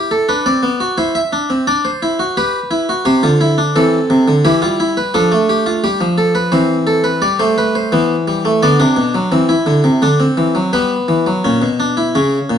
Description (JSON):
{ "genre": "classical, baroque-style 3-part fugue for harpsichord", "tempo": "86 BPM", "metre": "3/4", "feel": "straight", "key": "C major", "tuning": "A4 = 440 Hz", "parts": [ { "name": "harpsichord", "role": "solo", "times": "0.0-12.6 s", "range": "Bb2 to E5", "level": "-12 LUFS", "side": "equal", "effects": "none" } ], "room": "moderate stone room reverb, RT60 1.0 s", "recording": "dark, warm production", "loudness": "-12 LUFS", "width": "side -8 dB against mid", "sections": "0.0-11.4 A section; 11.4-12.6 B section", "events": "none", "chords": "0.3 Bm; 1.0 C; 2.4 G; 3.1 C; 4.4 Em; 5.1 F; 6.5 C/E; 7.2 G; 8.6 Bm; 9.3 C; 10.7 G; 11.4 Bbdim" }